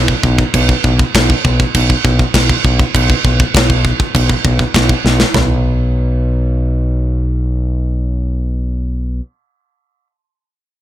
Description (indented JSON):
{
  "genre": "heavy metal",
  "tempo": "100 BPM",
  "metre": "4/4",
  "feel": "straight",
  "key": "unclear",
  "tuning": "A4 = 441 Hz",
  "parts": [
    { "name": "growling fingered electric bass", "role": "bass", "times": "0.0-9.2 s", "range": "B1", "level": "-14 LUFS", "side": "equal", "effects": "overdrive" },
    { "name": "tight metal drum kit", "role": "drums", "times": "0.1-5.5 s", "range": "crash cymbal, kick drum, snare drum, toms", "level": "-13 LUFS", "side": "right 1 dB", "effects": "none" }
  ],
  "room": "little or no reverb",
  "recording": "none",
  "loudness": "-11 LUFS",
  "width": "side -12 dB against mid",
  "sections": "0.0-5.3 A section; 5.3-7.7 B section",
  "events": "drum fill 5.0",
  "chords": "none",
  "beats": "| 0.55 1.15 1.75 2.35 | 2.95 3.54 4.14 4.74 | 5.34 5.94 6.54 7.14"
}